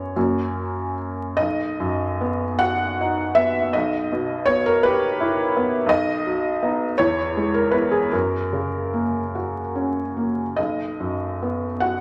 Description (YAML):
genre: classical, romantic nocturne for solo piano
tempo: 47-58 BPM (dotted quarters)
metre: 12/8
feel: rubato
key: B major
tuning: A4 = 441 Hz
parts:
  - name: felt-muted upright piano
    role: solo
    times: 0.0-12.0 s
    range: B1 to F#5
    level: -22 LUFS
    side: equal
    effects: none
room: wet recital hall reverb, RT60 1.6 s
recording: vinyl crackle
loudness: -22 LUFS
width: mono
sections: 0.0-1.4 A section; 1.4-12.0 B section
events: none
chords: 0.2 F#; 1.4 B; 3.7 Em/B; 5.9 B; 7.0 E6; 8.1 F#; 10.6 B